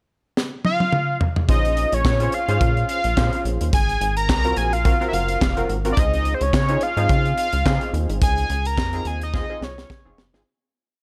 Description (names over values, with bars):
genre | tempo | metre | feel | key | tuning
early-eighties boogie funk | 107 BPM | 4/4 | swing 56% on 16ths | Db major | A4 = 436 Hz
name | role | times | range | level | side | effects
modern studio drum kit | drums | 0.4-10.5 s | handclaps, hi-hat, kick drum, snare drum, toms | -24 LUFS | equal | gated reverb
fat analog lead | melody | 0.7-10.2 s | C5 to Bb5 | -26 LUFS | equal | chorus
funky polysynth comp | accompaniment | 1.5-10.4 s | C4 to C5 | -30 LUFS | equal | chorus
rubbery square bass | bass | 1.5-10.4 s | F1 to Db3 | -26 LUFS | equal | none
room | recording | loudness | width
small room ambience | none | -21 LUFS | mono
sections
0.0-1.5 pickup bar; 1.5-10.5 verse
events
drum fill 0.4-1.5, 9.3-10.5; fade-out 8.2-10.5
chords
0.0 N.C.; 1.5 Bbm9; 3.7 Ab13; 6.0 Dbmaj9